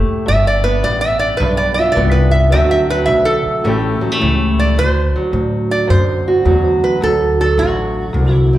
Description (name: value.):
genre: acoustic country blues, solo or duo.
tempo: 107 BPM.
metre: 4/4.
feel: swing 67% on 8ths.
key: D mixolydian.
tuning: A4 = 439 Hz.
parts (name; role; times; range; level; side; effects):
fingerpicked steel-string acoustic guitar; accompaniment; 0.0-8.6 s; D2 to G4; -17 LUFS; right 1 dB; none.
upright bass; bass; 0.0-8.6 s; G1 to A2; -16 LUFS; equal; none.
metal-body resonator slide guitar; melody; 0.3-8.6 s; F#4 to E5; -17 LUFS; right 2 dB; none.
room: wet recital hall reverb, RT60 1.4 s.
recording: recorded in a church or concert hall.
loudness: -12 LUFS.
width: side -14 dB against mid.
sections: 0.0-4.8 A section; 4.8-8.6 B section.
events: resonator guitar played with a steel bar solo 0.0-4.8.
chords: 0.3 G7; 2.5 D7; 3.6 A7; 4.8 D7.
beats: | 0.28 0.84 1.40 1.96 | 2.52 3.08 3.64 4.20 | 4.76 5.32 5.88 6.45 | 7.01 7.57 8.13.